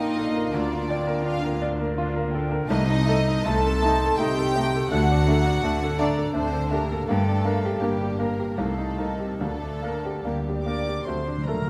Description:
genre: classical, romantic movement for piano and orchestra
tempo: 70-86 BPM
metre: 3/4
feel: rubato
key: G minor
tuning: A4 = 440 Hz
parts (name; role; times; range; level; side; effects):
- clear grand piano; melody; 0.0-11.7 s; C2 to D5; -30 LUFS; equal; none
- warm symphonic violin section; melody; 0.0-11.7 s; G3 to D6; -41 LUFS; equal; none
- mellow clarinet; second line; 0.0-11.7 s; D4 to D5; -40 LUFS; equal; none
- mellow hollow silver concert flute; second line; 0.0-11.5 s; D5 to C6; -39 LUFS; equal; none
- warm symphonic violin section; second line; 0.0-11.1 s; G4 to A5; -33 LUFS; equal; none
- dark symphonic viola section; accompaniment; 0.0-11.6 s; A3 to F#4; -37 LUFS; equal; none
- warm bassoon; accompaniment; 0.0-11.6 s; A3 to Bb3; -37 LUFS; equal; none
- warm French horn section; sustained chords; 0.0-11.7 s; G3 to A4; -33 LUFS; equal; none
- dark studio cello section; bass; 0.0-11.7 s; G2 to D3; -33 LUFS; equal; none
- dark symphonic double bass section; bass; 0.0-11.7 s; G1 to D2; -32 LUFS; equal; none
- timpani; percussion; 9.4-11.7 s; D3; -35 LUFS; equal; none
- clear trumpet; stabs; 10.7-11.7 s; Bb4 to D5; -37 LUFS; equal; none
room: moderate concert hall reverb, RT60 2.1 s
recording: close, detailed microphones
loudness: -24 LUFS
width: mono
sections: 0.0-11.7 A section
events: timpani fill 11.1-11.7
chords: 0.0 Bb; 0.5 Bb/D; 2.7 Adim/C; 4.9 D; 7.1 Gm; 8.6 Cm7; 9.4 Gm/D; 11.1 D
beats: | 0.53 1.24 1.96 | 2.68 3.45 4.18 | 4.91 5.64 6.35 | 7.08 7.82 8.58 | 9.41 10.25 11.07

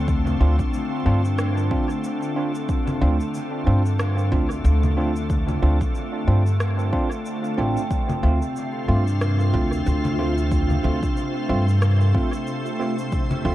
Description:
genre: ambient dub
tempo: 92 BPM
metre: 4/4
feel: swing 57% on 16ths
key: D minor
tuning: A4 = 440 Hz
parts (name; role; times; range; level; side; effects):
- soft additive organ-like pad; sustained chords; 0.0-13.5 s; C3 to C5; -29 LUFS; equal; ensemble chorus, built-in reverb
- vibraphone with medium mallets; arpeggios; 0.0-13.5 s; C4 to G5; -30 LUFS; left 1 dB; tape echo
- upright bass; bass; 0.0-13.5 s; A1 to G2; -20 LUFS; equal; none
- electronic cabasa, congas and rim click; drums; 0.1-13.4 s; none; -33 LUFS; left 1 dB; dub echo
- electronic kick drum; drums; 0.1-13.3 s; none; -24 LUFS; equal; none
- tine electric piano; stabs; 0.4-13.5 s; A3 to F4; -28 LUFS; right 2 dB; fast stereo tremolo, dub echo
room: little or no reverb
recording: echo-heavy mix, vinyl crackle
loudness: -19 LUFS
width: side -14 dB against mid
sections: 0.0-13.5 A section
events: none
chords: 0.0 Dm7; 7.9 F/D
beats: | 0.08 0.73 1.39 2.04 | 2.69 3.34 3.99 4.64 | 5.30 5.95 6.60 7.25 | 7.91 8.56 9.21 9.86 | 10.52 11.17 11.82 12.47 | 13.12

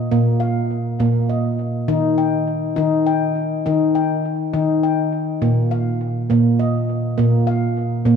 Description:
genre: world meditative, meditative tuned percussion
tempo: 68 BPM (dotted quarters)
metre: 6/8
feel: straight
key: unclear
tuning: A4 = 442 Hz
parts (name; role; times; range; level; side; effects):
- handpan; solo; 0.0-8.2 s; Bb2 to G5; -16 LUFS; left 1 dB; tape echo
room: wet church reverb, RT60 3.0 s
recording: dark, warm production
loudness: -17 LUFS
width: side -6 dB against mid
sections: 0.0-8.2 A section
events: none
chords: 0.0 Bb5; 1.9 Eb; 5.4 Bb5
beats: | 0.11 0.99 | 1.88 2.76 | 3.65 4.53 | 5.41 6.30 | 7.18 8.06

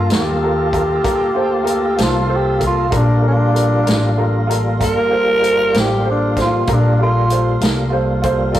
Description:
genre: slow blues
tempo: 64 BPM (dotted quarters)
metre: 12/8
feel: straight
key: G minor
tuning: A4 = 440 Hz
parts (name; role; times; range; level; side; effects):
- growling tenor saxophone; melody; 0.0-7.6 s; D4 to Bb4; -17 LUFS; equal; none
- clear upright piano; accompaniment; 0.0-8.6 s; F4 to C5; -22 LUFS; right 2 dB; none
- tonewheel organ; sustained chords; 0.0-8.6 s; G3 to A4; -22 LUFS; equal; slow rotary speaker, chorus vibrato
- upright bass; bass; 0.0-8.6 s; G1 to Eb2; -19 LUFS; equal; none
- vintage drum kit; drums; 0.1-8.6 s; hi-hat, kick drum, snare drum; -21 LUFS; equal; none
room: moderate stone room reverb, RT60 1.1 s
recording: rough rehearsal-room recording, warm saturation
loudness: -13 LUFS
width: side -12 dB against mid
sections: 0.0-8.6 A section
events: none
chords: 0.0 Gm7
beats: 0.10 1.04 1.98 | 2.92 3.86 4.80 5.74 | 6.68 7.62 8.56

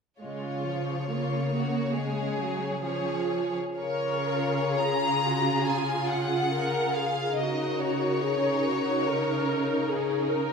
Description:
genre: classical, slow romantic movement for string orchestra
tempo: 57-74 BPM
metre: 4/4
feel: rubato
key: Db major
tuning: A4 = 443 Hz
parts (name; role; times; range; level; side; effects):
- clear studio violin section; melody; 0.2-10.3 s; Db5 to Bb5; -30 LUFS; left 2 dB; none
- rich studio violin section; second line; 0.2-10.5 s; Eb4 to Bb4; -33 LUFS; left 2 dB; none
- rich studio viola section; accompaniment; 0.2-10.5 s; F3 to Bb4; -30 LUFS; right 2 dB; none
- rich studio cello section; bass; 0.2-10.5 s; Db3; -31 LUFS; right 1 dB; none
room: wet scoring stage reverb, RT60 1.7 s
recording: minimal, uncompressed stereo recording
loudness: -25 LUFS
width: side -5 dB against mid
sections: 0.2-3.8 A section; 3.8-10.5 B section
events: none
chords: 0.2 Db; 7.4 Ebm7/Db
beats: | 0.21 1.12 1.96 2.83 | 3.79 4.78 5.67 6.53 | 7.39 8.23 9.06 9.88

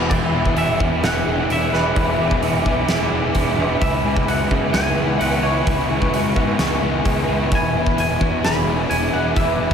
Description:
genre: rock, shoegaze and dream pop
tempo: 130 BPM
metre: 4/4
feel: straight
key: E mixolydian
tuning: A4 = 439 Hz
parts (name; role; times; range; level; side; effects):
- ethereal airy pad; sustained chords; 0.0-9.7 s; B4 to D6; -25 LUFS; right 1 dB; ensemble chorus, built-in reverb
- fingerpicked twelve-string acoustic guitar; arpeggios; 0.0-9.7 s; E4 to B4; -27 LUFS; left 4 dB; wide subtle chorus, analog delay
- crunchy overdriven guitar; riff; 0.0-9.7 s; E2 to E4; -24 LUFS; right 6 dB; reverse reverb
- thick fuzz guitar; riff; 0.0-9.7 s; C#3 to E4; -24 LUFS; left 7 dB; distortion, analog chorus
- fuzz picked electric bass; bass; 0.0-9.7 s; E1 to C#3; -24 LUFS; equal; overdrive
- twangy electric guitar; melody; 0.1-9.7 s; B4 to B5; -27 LUFS; equal; analog delay
- huge arena drum kit; drums; 0.1-9.7 s; crash cymbal, hi-hat, kick drum, snare drum; -23 LUFS; equal; none
room: wet huge ambient reverb, RT60 8.8 s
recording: dreamy mix soaked in reverb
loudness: -16 LUFS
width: side -7 dB against mid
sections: 0.1-9.7 A section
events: none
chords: 0.1 E7; 3.8 C#m7; 7.5 E7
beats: | 0.11 0.57 1.03 1.50 | 1.96 2.43 2.89 3.35 | 3.82 4.28 4.74 5.21 | 5.67 6.13 6.59 7.05 | 7.51 7.98 8.44 8.90 | 9.36

